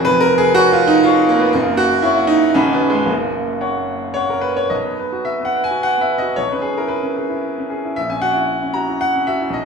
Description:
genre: classical, romantic character piece for solo piano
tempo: 105-122 BPM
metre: 3/4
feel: rubato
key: B major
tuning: A4 = 442 Hz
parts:
  - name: bright grand piano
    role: solo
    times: 0.0-9.7 s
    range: B0 to C#6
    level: -14 LUFS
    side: right 1 dB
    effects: none
room: wet stone room reverb, RT60 1.4 s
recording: heard from further back in the room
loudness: -14 LUFS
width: side -5 dB against mid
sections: 0.0-4.7 A section; 4.7-9.7 B section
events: none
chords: 0.1 C#/E#; 1.6 F#5; 2.6 B; 3.1 F#; 4.7 B; 6.4 C#m7/B; 8.0 F#7/A#

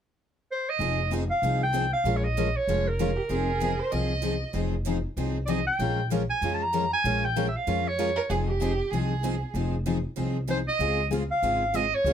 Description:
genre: acoustic string swing (jazz manouche)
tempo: 192 BPM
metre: 4/4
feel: swing 60% on 8ths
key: F minor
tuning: A4 = 440 Hz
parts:
  - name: bright clarinet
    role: melody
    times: 0.5-8.3, 10.5-12.1 s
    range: Bb4 to Bb5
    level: -26 LUFS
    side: right 1 dB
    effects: none
  - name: picked steel-string acoustic guitar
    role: accompaniment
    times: 0.8-12.1 s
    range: Db3 to Bb4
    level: -31 LUFS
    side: left 6 dB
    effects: none
  - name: picked steel-string acoustic guitar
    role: accompaniment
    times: 0.8-12.1 s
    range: Db3 to Bb4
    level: -35 LUFS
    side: right 9 dB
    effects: none
  - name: upright bass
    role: bass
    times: 0.8-12.1 s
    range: F1 to F2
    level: -30 LUFS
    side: equal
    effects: none
  - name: dark violin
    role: second line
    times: 3.2-4.5, 8.2-9.5 s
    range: G4 to Eb5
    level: -31 LUFS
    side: right 4 dB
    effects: none
room: light reverb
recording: none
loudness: -24 LUFS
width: side -9 dB against mid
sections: 0.8-12.1 A section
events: none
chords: 0.0 N.C.; 0.8 Fm7; 2.0 Bbm7; 3.3 Fm7; 5.8 Bbm7; 8.3 Fm7; 10.8 Dbmaj7

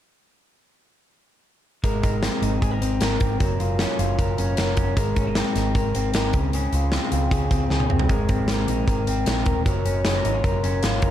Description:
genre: jangly indie pop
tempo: 154 BPM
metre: 4/4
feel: straight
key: Ab major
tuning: A4 = 440 Hz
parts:
  - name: electric guitar through a small old amp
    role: arpeggios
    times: 1.8-11.1 s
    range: Db3 to Bb4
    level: -24 LUFS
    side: left 2 dB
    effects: spring reverb, plate reverb
  - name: vintage muted picked electric bass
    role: bass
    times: 1.8-11.1 s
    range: Eb1 to Db2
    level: -24 LUFS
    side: equal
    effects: none
  - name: big rock drum kit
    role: drums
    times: 1.8-11.1 s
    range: hi-hat, kick drum, snare drum, toms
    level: -24 LUFS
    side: equal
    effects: none
room: light reverb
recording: dark, warm production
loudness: -20 LUFS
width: side -11 dB against mid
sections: 1.8-8.1 A section; 8.1-11.1 B section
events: drum fill 7.7-8.1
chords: 1.8 Abadd9; 3.4 Gbmaj7; 5.0 Abadd9; 6.3 Dbmaj7; 8.1 Abadd9; 9.7 Gbmaj7

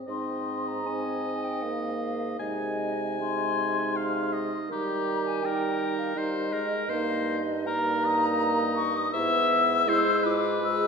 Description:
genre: classical, slow romantic movement for wind quintet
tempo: 71-85 BPM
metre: 3/4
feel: rubato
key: Ab major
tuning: A4 = 440 Hz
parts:
  - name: mellow French horn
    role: accompaniment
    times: 0.0-10.9 s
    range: G3 to C4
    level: -32 LUFS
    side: right 1 dB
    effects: none
  - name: mellow hollow silver concert flute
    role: melody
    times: 0.1-10.9 s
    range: Eb5 to E6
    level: -29 LUFS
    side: left 3 dB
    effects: none
  - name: clear oboe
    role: second line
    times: 0.1-10.9 s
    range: G4 to Ab5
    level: -32 LUFS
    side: left 2 dB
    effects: none
  - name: dark clarinet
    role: accompaniment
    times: 0.1-10.9 s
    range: Eb4 to F4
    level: -33 LUFS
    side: right 3 dB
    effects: none
  - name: mellow bassoon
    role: bass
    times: 0.1-10.9 s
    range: G2 to Eb3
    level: -34 LUFS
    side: right 4 dB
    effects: none
room: wet concert hall reverb, RT60 1.8 s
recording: recorded in a church or concert hall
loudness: -25 LUFS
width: side -5 dB against mid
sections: 0.1-10.9 A section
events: none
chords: 0.1 Ab; 2.4 Ab/C; 4.7 Eb; 6.9 Eb/G; 9.1 E/G#

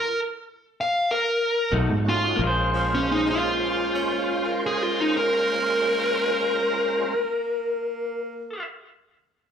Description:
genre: blues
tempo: 88-102 BPM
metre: 4/4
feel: straight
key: Bb minor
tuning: A4 = 439 Hz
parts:
  - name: dark smooth lead guitar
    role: melody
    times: 0.0-8.6 s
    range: Db4 to F5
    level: -23 LUFS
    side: left 1 dB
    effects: overdrive, slapback echo
  - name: electric guitar through a small old amp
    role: stabs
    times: 1.7-7.3 s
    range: B2 to C5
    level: -30 LUFS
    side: left 1 dB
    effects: slapback echo, digital delay
  - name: fingered electric bass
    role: bass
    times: 1.7-7.1 s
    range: Bb1 to Ab2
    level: -26 LUFS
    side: equal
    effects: none
  - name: tonewheel organ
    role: accompaniment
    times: 2.0-7.1 s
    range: Ab3 to C5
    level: -29 LUFS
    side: right 3 dB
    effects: slow rotary speaker, overdrive, chorus vibrato, slapback echo
  - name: growling tenor saxophone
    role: second line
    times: 2.7-8.6 s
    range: F3 to Db4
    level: -30 LUFS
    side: right 4 dB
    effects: none
room: moderate club reverb, RT60 0.5 s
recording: live gig heard through the venue's PA, club reverb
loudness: -21 LUFS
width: side -7 dB against mid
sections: 0.0-2.4 A section; 2.4-7.9 B section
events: slowing down 0.0-2.4; stop 0.0-1.7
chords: 0.0 N.C.; 1.7 B7; 2.4 Bbm9

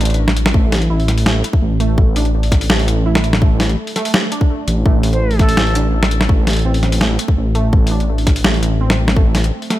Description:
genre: half-time drum and bass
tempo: 167 BPM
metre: 4/4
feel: half-time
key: A minor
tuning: A4 = 440 Hz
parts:
  - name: warbly dusty pluck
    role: arpeggios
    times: 0.0-9.8 s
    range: A3 to E4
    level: -22 LUFS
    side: right 3 dB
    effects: chorus, cassette tape, ping-pong delay
  - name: dark detuned saw bass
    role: bass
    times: 0.0-9.5 s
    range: A1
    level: -16 LUFS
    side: equal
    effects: tube saturation
  - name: boom bap sampler-style drum kit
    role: drums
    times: 0.0-9.8 s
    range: hi-hat, snare drum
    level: -18 LUFS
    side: equal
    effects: studio reverb
  - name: electronic kick drum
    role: drums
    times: 0.5-9.2 s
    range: none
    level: -13 LUFS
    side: equal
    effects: studio reverb
  - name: silver concert flute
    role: melody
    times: 5.1-5.8 s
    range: A4 to C5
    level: -25 LUFS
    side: equal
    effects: ping-pong delay
room: little or no reverb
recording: none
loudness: -12 LUFS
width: side -14 dB against mid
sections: 0.0-9.8 A section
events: none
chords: none

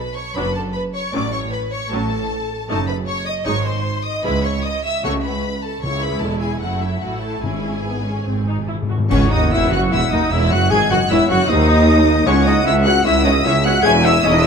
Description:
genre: classical, dramatic, fast romantic movement for symphony orchestra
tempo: 152 BPM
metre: 4/4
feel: rubato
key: C# minor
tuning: A4 = 440 Hz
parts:
  - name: rich symphonic violin section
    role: melody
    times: 0.0-14.5 s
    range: E5 to G#6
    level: -25 LUFS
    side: left 3 dB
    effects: none
  - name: rich symphonic violin section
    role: second line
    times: 0.0-14.5 s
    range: C#4 to E5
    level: -25 LUFS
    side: left 2 dB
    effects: none
  - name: warm symphonic viola section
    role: accompaniment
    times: 0.4-14.5 s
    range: F#3 to G#4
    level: -24 LUFS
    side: equal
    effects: none
  - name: rich symphonic cello section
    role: bass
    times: 0.4-14.5 s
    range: C#2 to A2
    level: -23 LUFS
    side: right 2 dB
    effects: none
  - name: rich symphonic double bass section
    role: bass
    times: 0.4-14.5 s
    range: E1 to D#2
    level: -23 LUFS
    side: right 2 dB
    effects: none
  - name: timpani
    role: percussion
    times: 5.0-12.8 s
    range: G#2 to C#3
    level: -26 LUFS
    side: left 2 dB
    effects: none
  - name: cymbal swell, clash cymbals and concert bass drum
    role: percussion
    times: 5.8-9.9 s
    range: none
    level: -28 LUFS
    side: equal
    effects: none
  - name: clear clarinet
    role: second line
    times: 9.1-14.5 s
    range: B#4 to F#5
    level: -27 LUFS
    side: left 2 dB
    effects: none
  - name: clear oboe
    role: second line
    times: 9.1-14.5 s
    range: C#5 to G#5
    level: -26 LUFS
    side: right 2 dB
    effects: none
  - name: concert flute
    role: second line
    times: 9.1-14.5 s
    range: C#5 to G#5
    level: -24 LUFS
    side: left 3 dB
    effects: none
  - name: mellow French horn section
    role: sustained chords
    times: 9.1-14.5 s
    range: C#4 to G#4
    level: -22 LUFS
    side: left 5 dB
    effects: none
  - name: mellow trumpet section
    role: stabs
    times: 9.1-14.5 s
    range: C#5 to G#5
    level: -22 LUFS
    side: equal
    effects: none
  - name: mellow tuba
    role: bass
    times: 9.1-14.5 s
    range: E1 to D#2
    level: -23 LUFS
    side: right 4 dB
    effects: none
room: moderate scoring stage reverb, RT60 1.9 s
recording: none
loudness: -15 LUFS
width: side -6 dB against mid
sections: 0.0-9.1 A section; 9.1-14.5 B section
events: timpani fill 8.3-9.1; band accent 9.1-9.5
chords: 0.0 Bm; 1.1 F#m/A; 2.7 D#dim/F#; 3.5 G#; 4.2 C#m; 5.0 F#m/C#; 5.8 C#m; 6.6 F#m7; 7.4 C#m/G#; 8.3 G#; 9.1 C#m; 10.7 G#7; 12.3 C#m; 13.8 C#m/E

